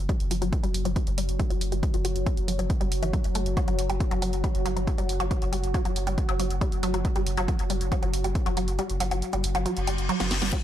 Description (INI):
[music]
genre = driving peak-time techno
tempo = 138 BPM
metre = 4/4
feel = straight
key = unclear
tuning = A4 = 440 Hz
[part]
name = saturated sub bass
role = bass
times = 0.0-10.5 s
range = F#1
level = -30 LUFS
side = equal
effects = overdrive, sidechain pumping, low-pass filter
[part]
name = deep dark ambient pad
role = drone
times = 0.0-10.6 s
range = F#3 to F#4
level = -33 LUFS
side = equal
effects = chorus, built-in reverb, sidechain pumping
[part]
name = resonant blip pluck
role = riff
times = 0.1-10.6 s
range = E3 to A3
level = -31 LUFS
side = equal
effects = phaser, overdrive, sidechain pumping, dub echo
[part]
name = electronic kick drum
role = drums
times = 0.1-10.6 s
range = none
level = -27 LUFS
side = equal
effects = none
[part]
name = techno drum kit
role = drums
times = 0.1-10.6 s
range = crash cymbal, hi-hat, shaker, snare drum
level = -35 LUFS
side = right 2 dB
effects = none
[part]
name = reverse cymbal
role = sound effects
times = 9.8-10.5 s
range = none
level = -32 LUFS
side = left 4 dB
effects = none
[sound]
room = little or no reverb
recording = none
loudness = -24 LUFS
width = side -11 dB against mid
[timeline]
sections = 0.0-10.6 A section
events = filter sweep on synth arpeggio sound 0.0-10.6; kick drops out 8.8-10.5; reverse cymbal 9.8-10.5; drum fill 10.2-10.5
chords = none